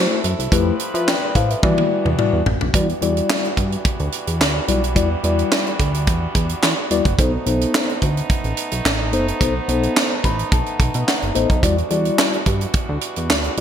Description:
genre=early-eighties boogie funk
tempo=108 BPM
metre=4/4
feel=straight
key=E minor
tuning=A4 = 440 Hz
part: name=mellow tine electric piano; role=accompaniment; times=0.0-13.6 s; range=G3 to B5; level=-21 LUFS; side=left 3 dB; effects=slow stereo tremolo
part: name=muted French horn section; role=sustained chords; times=0.0-13.6 s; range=B2 to B4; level=-28 LUFS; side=right 1 dB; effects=none
part: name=chorused synth bass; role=bass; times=0.0-13.6 s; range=F#1 to F3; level=-21 LUFS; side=right 1 dB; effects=none
part: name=tight funk drum kit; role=drums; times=0.2-13.6 s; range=handclaps, hi-hat, kick drum, snare drum, toms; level=-20 LUFS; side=right 1 dB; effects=gated reverb
room=moderate plate reverb, RT60 2.7 s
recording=bright 1980s-style digital production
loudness=-16 LUFS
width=side -9 dB against mid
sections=0.0-2.7 A section; 2.7-13.6 B section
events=drum fill 1.6-2.7; tine electric piano fill 10.0-11.6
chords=0.0 F#m7b5; 0.5 Fmaj9#11; 1.6 Em9; 7.2 B7b9; 11.6 Em9

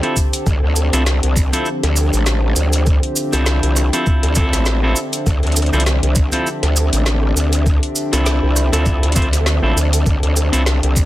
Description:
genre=glitch hop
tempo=100 BPM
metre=4/4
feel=swing 56% on 16ths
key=D minor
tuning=A4 = 441 Hz
part: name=warm analog pad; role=sustained chords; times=0.0-11.1 s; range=D3 to E5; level=-25 LUFS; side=left 2 dB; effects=chorus, sidechain pumping
part: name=semi-hollow electric guitar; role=stabs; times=0.0-10.6 s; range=C4 to C5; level=-23 LUFS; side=equal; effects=vintage 12-bit sampler grit, sidechain pumping, tape echo
part: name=drum and bass drum kit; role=drums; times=0.0-10.9 s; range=hi-hat, rim click, snare drum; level=-22 LUFS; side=equal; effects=none
part: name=warbly tape-like pad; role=texture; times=0.0-11.1 s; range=D4 to A5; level=-27 LUFS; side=right 2 dB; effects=chorus, built-in reverb, sidechain pumping
part: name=electronic kick drum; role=drums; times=0.2-11.1 s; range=none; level=-16 LUFS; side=equal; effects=none
part: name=cabasa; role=percussion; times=0.2-11.1 s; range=none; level=-23 LUFS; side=right 2 dB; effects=none
part: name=growl bass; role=bass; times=0.5-11.1 s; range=A1 to D2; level=-16 LUFS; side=equal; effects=chorus, tube saturation
room=digital ambience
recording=dense, heavily limited modern master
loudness=-14 LUFS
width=side -15 dB against mid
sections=0.0-11.1 A section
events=none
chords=0.0 Dm9

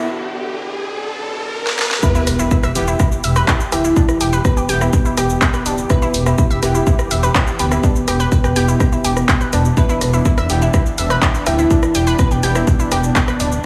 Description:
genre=melodic techno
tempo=124 BPM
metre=4/4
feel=straight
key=E minor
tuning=A4 = 440 Hz
part: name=soft octave-layered synth lead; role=melody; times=0.0-13.5 s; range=B3 to E4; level=-23 LUFS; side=equal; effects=chorus, tremolo, digital delay
part: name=muted studio string section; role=sustained chords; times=0.0-13.7 s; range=E2 to G4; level=-29 LUFS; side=equal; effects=sidechain pumping
part: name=analog pluck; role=arpeggios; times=0.0-13.5 s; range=D4 to G5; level=-25 LUFS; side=equal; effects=chorus, sidechain pumping, digital delay
part: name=riser and sub drop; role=sound effects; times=0.0-4.0 s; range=none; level=-27 LUFS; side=equal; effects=none
part: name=deep house drum kit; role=drums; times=1.7-13.6 s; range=handclaps, hi-hat, rim click, shaker, snare drum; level=-24 LUFS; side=equal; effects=overdrive, sidechain pumping on perc, high-pass filter on perc, sidechain pumping on hats, high-pass filter on hats, high-pass filter on snare
part: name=glassy wavetable pluck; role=second line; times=2.0-13.5 s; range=B4 to E5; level=-30 LUFS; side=equal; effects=chorus, sidechain pumping, digital delay
part: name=electronic kick drum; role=drums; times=2.0-13.3 s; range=none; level=-18 LUFS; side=equal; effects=none
part: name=dark detuned saw bass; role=bass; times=2.3-13.6 s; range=D1 to E1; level=-21 LUFS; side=equal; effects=sidechain pumping
part: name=synth brass stab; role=stabs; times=2.8-12.5 s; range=E3 to G4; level=-27 LUFS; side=equal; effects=none
room=light reverb, digital ambience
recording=high-pass filter, studio reverb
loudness=-16 LUFS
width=mono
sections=0.0-2.0 A section; 2.0-13.7 B section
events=build-up 0.0-2.0; riser 0.0-2.0; filter sweep on synth arpeggio sound 0.0-2.0; filter sweep 0.0-2.0; break 0.1-2.0; drum fill 1.7-2.0; drop 2.0-13.7; impact 2.0-4.0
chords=0.0 E5; 2.0 Em

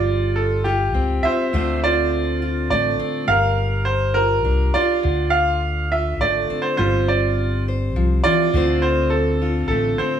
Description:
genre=folk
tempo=103 BPM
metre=3/4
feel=straight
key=D minor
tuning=A4 = 441 Hz
part: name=bright grand piano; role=melody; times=0.0-10.2 s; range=F4 to F5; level=-20 LUFS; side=right 2 dB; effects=none
part: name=fingerpicked steel-string acoustic guitar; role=accompaniment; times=0.0-10.2 s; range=D3 to C5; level=-25 LUFS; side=left 4 dB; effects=none
part: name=fingered electric bass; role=bass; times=0.0-9.9 s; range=G1 to D2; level=-22 LUFS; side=equal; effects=none
room=moderate recital hall reverb, RT60 1.3 s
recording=recorded in a church or concert hall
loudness=-17 LUFS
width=side -9 dB against mid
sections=0.0-10.2 A section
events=none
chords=0.0 G7sus4; 1.5 Dm7; 3.3 Gm7; 5.0 Dm7; 6.8 G7sus4; 8.5 Dm7

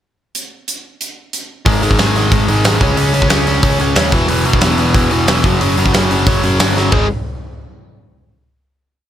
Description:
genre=punk rock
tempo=182 BPM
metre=4/4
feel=straight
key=G# minor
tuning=A4 = 443 Hz
part: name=big rock drum kit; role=drums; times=0.3-7.0 s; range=hi-hat, kick drum, snare drum, toms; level=-16 LUFS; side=equal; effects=none
part: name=biting overdriven guitar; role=riff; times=1.7-7.1 s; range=E2 to C#4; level=-14 LUFS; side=equal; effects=none
part: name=overdriven picked electric bass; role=bass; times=1.7-7.1 s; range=E1 to D#2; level=-18 LUFS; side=equal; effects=none
room=little or no reverb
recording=none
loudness=-11 LUFS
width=side -10 dB against mid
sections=0.3-1.7 pickup bar; 1.7-6.9 verse; 6.9-8.2 final chord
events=drum fill 6.8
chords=0.3 N.C.; 1.7 G#5; 2.8 C#5; 4.1 E5; 5.4 F#5; 6.9 G#5

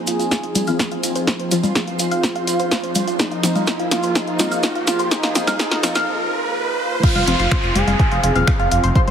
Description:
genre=melodic techno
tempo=125 BPM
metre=4/4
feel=straight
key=F minor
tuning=A4 = 440 Hz
part: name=warm analog pad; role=sustained chords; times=0.0-9.1 s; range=F3 to F4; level=-28 LUFS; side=right 1 dB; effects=chorus, sidechain pumping
part: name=tight sequenced synth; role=arpeggios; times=0.0-9.1 s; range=F4 to F5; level=-24 LUFS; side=right 1 dB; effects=chorus, phaser, sidechain pumping, tape echo
part: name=synth brass stab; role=stabs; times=0.0-9.1 s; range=F3 to F4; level=-27 LUFS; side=left 2 dB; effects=none
part: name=riser and downlifter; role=sound effects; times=0.0-9.1 s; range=none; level=-26 LUFS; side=right 2 dB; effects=none
part: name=ethereal airy pad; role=texture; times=0.0-6.1 s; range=F3 to C5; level=-29 LUFS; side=equal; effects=ensemble chorus, built-in reverb, phaser, sidechain pumping
part: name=wide unison lead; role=melody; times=0.1-8.6 s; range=Eb4 to Ab4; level=-25 LUFS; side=equal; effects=sidechain pumping, ping-pong delay
part: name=punchy analog drum machine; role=drums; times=0.1-9.1 s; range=claves, congas, crash cymbal, finger snaps, hi-hat, snare drum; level=-22 LUFS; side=left 1 dB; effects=none
part: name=maracas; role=percussion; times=0.1-6.0 s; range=none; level=-29 LUFS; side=right 4 dB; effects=none
part: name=electronic kick drum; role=drums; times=0.3-9.1 s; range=none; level=-19 LUFS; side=equal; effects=high-pass filter on kick
part: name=dark detuned saw bass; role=bass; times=7.2-9.1 s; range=Eb1 to F1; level=-20 LUFS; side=equal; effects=sidechain pumping
room=moderate lush hall reverb, RT60 2.0 s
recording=heavily compressed radio sound, multiband compression, high-pass filter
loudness=-16 LUFS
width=side -8 dB against mid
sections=0.0-7.0 A section; 7.0-9.1 B section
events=build-up 0.0-7.0; drum fill 0.0-6.1; riser 0.0-7.0; filter sweep on synth arpeggio sound 0.0-7.0; filter sweep on analog synth lead 0.0-7.0; break 6.1-7.0; drop 7.0-9.1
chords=0.0 Fm

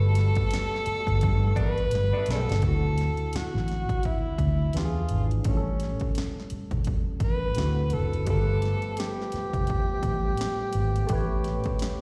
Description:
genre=R&B, neo-soul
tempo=85 BPM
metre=4/4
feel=swing 59% on 16ths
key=G major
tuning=A4 = 440 Hz
part: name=breathy tenor saxophone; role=melody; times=0.0-12.0 s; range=C#4 to B4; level=-33 LUFS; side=equal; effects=slapback echo
part: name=barky tine electric piano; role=accompaniment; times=0.0-12.0 s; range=A2 to C#5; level=-38 LUFS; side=equal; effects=overdrive, phaser
part: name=percussive tonewheel organ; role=sustained chords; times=0.0-2.6, 8.3-12.0 s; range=C#3 to G4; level=-42 LUFS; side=equal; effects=slow rotary speaker, overdrive, chorus vibrato
part: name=vintage muted fingered electric bass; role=bass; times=0.0-11.6 s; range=E1 to G2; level=-28 LUFS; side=equal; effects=none
part: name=punchy analog drum machine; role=drums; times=0.2-12.0 s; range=hi-hat, kick drum, snare drum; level=-32 LUFS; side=equal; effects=none
part: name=mellow horn section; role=stabs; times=1.6-2.6 s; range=A3 to D4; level=-38 LUFS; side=equal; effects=slapback echo
room=little or no reverb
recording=live gig heard through the venue's PA, recital hall reverb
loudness=-26 LUFS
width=mono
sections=0.0-2.6 A section; 2.6-12.0 B section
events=band accent 0.0-2.6; drum fill 1.9-2.6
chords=0.0 Gmaj9; 2.6 D9; 4.7 E7b9; 5.4 A7; 7.6 D13; 8.3 G9; 11.1 A9

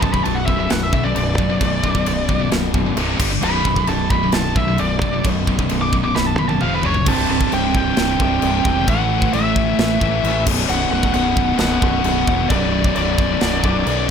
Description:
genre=heavy metal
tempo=132 BPM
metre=4/4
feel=straight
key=B phrygian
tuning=A4 = 440 Hz
part: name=high-gain lead guitar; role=melody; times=0.0-14.1 s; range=B4 to D6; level=-22 LUFS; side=right 1 dB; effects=distortion, ping-pong delay
part: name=high-gain distorted guitar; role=riff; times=0.0-14.1 s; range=B1 to G3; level=-24 LUFS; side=left 13 dB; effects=distortion
part: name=scooped high-gain guitar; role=riff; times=0.0-7.1 s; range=B1 to G3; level=-26 LUFS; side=right 13 dB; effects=distortion
part: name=sludgy distorted guitar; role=riff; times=0.0-14.1 s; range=B1 to A3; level=-23 LUFS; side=equal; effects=overdrive
part: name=growling fingered electric bass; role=bass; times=0.0-14.1 s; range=B0 to B1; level=-23 LUFS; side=equal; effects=overdrive
part: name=tight metal drum kit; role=drums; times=0.0-14.0 s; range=china cymbal, crash cymbal, kick drum, snare drum, toms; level=-22 LUFS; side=equal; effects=none
part: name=bluesy overdriven lead guitar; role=second line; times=7.1-14.0 s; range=F#3 to C4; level=-24 LUFS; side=right 4 dB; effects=distortion
room=light reverb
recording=none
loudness=-15 LUFS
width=side -7 dB against mid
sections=0.0-7.1 A section; 7.1-14.1 B section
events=lead electric guitar solo 0.0-7.1; drum fill 6.2-7.1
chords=0.0 Bm; 3.0 C5; 3.2 G5; 3.4 Bm; 6.6 F5; 6.8 F#5; 7.1 C5; 8.9 A5; 10.5 Bm

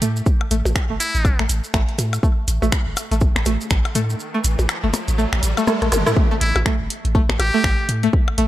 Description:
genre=minimal techno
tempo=122 BPM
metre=4/4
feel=swing 59% on 16ths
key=unclear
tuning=A4 = 440 Hz
part: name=string-like resonator pluck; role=riff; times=0.0-8.5 s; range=A3 to E4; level=-25 LUFS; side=equal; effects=chorus, phaser, sidechain pumping, dub echo
part: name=punchy sub bass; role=bass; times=0.0-8.5 s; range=G1 to A2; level=-21 LUFS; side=equal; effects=sidechain pumping
part: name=punchy analog drum machine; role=drums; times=0.0-8.5 s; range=finger snaps, hi-hat, rim click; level=-25 LUFS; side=equal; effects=none
part: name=maracas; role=percussion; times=0.0-6.1 s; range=none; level=-30 LUFS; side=right 3 dB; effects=none
part: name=electronic kick drum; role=drums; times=0.3-8.2 s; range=none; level=-18 LUFS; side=equal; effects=none
part: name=percussion blips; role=percussion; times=0.4-8.4 s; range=none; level=-26 LUFS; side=left 3 dB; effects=none
part: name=trumpet with metal mute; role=melody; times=1.0-1.4, 6.4-7.9 s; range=E4 to G4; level=-25 LUFS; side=left 1 dB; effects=dub echo
part: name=riser and zap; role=sound effects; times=3.7-6.2 s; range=none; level=-29 LUFS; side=right 1 dB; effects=none
room=light reverb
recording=none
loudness=-17 LUFS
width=side -14 dB against mid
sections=0.0-6.2 A section; 6.2-8.5 B section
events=riser 3.7-6.2; kick drops out 4.2-6.2; drum fill 5.7-6.2; drop 6.2-8.5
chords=0.0 N.C.; 6.2 A7(no3)

